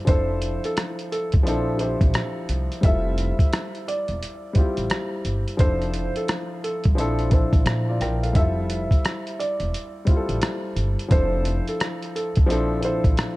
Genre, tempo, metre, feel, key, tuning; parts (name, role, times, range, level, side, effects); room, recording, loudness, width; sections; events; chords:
lo-fi hip hop; 87 BPM; 4/4; swing 64% on 16ths; F major; A4 = 440 Hz
felt-muted upright piano; melody; 0.0-13.0 s; A4 to E5; -30 LUFS; right 1 dB; tape echo
warm upright piano; accompaniment; 0.0-13.4 s; F3 to G5; -27 LUFS; left 1 dB; cassette tape
upright bass; bass; 0.1-13.2 s; E1 to Bb2; -25 LUFS; equal
lo-fi sampler-style drum kit; drums; 0.1-13.4 s; hi-hat, kick drum, rim click; -21 LUFS; equal
small room ambience; dark, warm production; -20 LUFS; side -19 dB against mid
0.0-13.4 A section
0.1 Dm9/F; 1.5 Bbmaj9#11; 2.8 Fmaj7; 5.6 Dm9/F; 7.0 Bbmaj9#11; 8.3 Fmaj7; 11.1 Dm9/F; 12.5 Bbmaj9#11